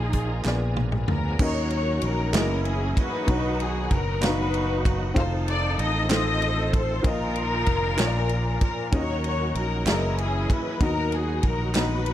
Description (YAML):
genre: slow gospel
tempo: 64 BPM (dotted quarters)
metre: 6/8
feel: straight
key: Eb minor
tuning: A4 = 441 Hz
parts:
  - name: warm studio string section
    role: melody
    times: 0.0-12.1 s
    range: Db4 to Eb5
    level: -28 LUFS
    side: left 2 dB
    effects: none
  - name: warm upright piano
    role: accompaniment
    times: 0.0-12.1 s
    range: Bb2 to A#5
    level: -30 LUFS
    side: left 2 dB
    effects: none
  - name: bright tonewheel organ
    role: sustained chords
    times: 0.0-12.1 s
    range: Eb3 to Eb5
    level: -35 LUFS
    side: right 2 dB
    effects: slow rotary speaker, overdrive, chorus vibrato
  - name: fingered electric bass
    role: bass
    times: 0.0-12.1 s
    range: F1 to Eb2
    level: -27 LUFS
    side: equal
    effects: none
  - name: natural country drum kit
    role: drums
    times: 0.1-12.1 s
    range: crash cymbal, hi-hat, kick drum, ride cymbal, snare drum, toms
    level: -27 LUFS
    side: equal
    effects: none
  - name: group handclap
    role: percussion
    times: 0.4-12.0 s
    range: none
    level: -34 LUFS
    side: right 6 dB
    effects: none
room: studio reverb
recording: dark, warm production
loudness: -22 LUFS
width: side -12 dB against mid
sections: 0.0-1.4 A section; 1.4-12.1 B section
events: drum fill 0.5-1.4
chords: 0.5 Bb7b9; 1.4 Ebm7; 2.3 Gb13; 3.3 Bmaj7; 5.2 F7; 7.0 Bbsus4; 8.0 Bb; 8.9 Ebm7; 9.9 Gb13; 10.8 Bmaj7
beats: 0.45 | 1.40 2.34 | 3.28 4.22 | 5.16 6.11 | 7.05 7.99 | 8.93 9.87 | 10.81 11.75